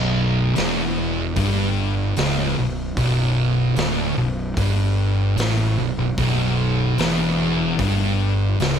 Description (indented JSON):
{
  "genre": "stoner and doom metal",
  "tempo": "75 BPM",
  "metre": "4/4",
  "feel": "straight",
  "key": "B minor",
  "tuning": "A4 = 439 Hz",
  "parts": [
    { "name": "thick fuzz guitar", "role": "riff", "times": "0.0-8.8 s", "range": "B1 to A2", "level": "-22 LUFS", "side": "left 6 dB", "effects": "distortion" },
    { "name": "thick fuzz guitar", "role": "riff", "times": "0.0-8.8 s", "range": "B1 to A2", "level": "-22 LUFS", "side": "right 6 dB", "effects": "distortion" },
    { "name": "fuzz fingered electric bass", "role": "bass", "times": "0.0-8.8 s", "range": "B0 to A1", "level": "-28 LUFS", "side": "equal", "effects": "overdrive" },
    { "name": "raw garage drum kit", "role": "drums", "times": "0.6-8.8 s", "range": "hi-hat, kick drum, snare drum", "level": "-28 LUFS", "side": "left 1 dB", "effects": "none" }
  ],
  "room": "little or no reverb",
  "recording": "none",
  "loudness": "-18 LUFS",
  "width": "side -8 dB against mid",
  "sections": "0.0-8.8 A section",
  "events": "none",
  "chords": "0.0 Bm"
}